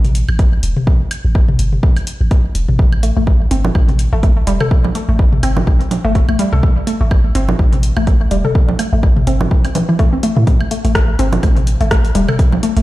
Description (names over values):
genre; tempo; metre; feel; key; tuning
minimal techno; 125 BPM; 4/4; swing 56% on 16ths; A minor; A4 = 443 Hz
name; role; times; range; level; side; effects
punchy sub bass; bass; 0.0-12.8 s; E1 to A2; -15 LUFS; equal; sidechain pumping
punchy analog drum machine; drums; 0.0-12.8 s; hi-hat, rim click; -25 LUFS; left 1 dB; none
electronic toms, woodblock and congas; percussion; 0.0-12.6 s; none; -21 LUFS; equal; overdrive, ping-pong delay
electronic kick drum; drums; 0.4-12.5 s; none; -13 LUFS; equal; none
hollow square pluck; riff; 3.0-12.8 s; E3 to A4; -19 LUFS; left 1 dB; chorus, sidechain pumping, digital delay
room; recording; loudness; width
little or no reverb; played on a big sound system in a bare room, stone room reverb; -12 LUFS; side -17 dB against mid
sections
0.0-12.8 A section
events
none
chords
none